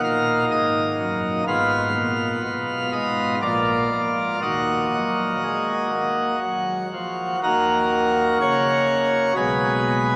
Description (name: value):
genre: classical, chorale-style piece for pipe organ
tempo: 62 BPM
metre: 3/4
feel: straight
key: Eb minor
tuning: A4 = 440 Hz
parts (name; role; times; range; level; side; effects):
- pipe organ, plenum; solo; 0.0-10.2 s; Ab1 to F5; -22 LUFS; equal; none
room: wet cathedral reverb, RT60 7.5 s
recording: none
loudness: -22 LUFS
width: mono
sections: 0.0-7.4 A section; 7.4-10.2 B section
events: none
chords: 0.0 Ebm; 1.5 Fdim/Ab; 3.4 Bb; 4.4 Ebm; 9.4 Abm/Cb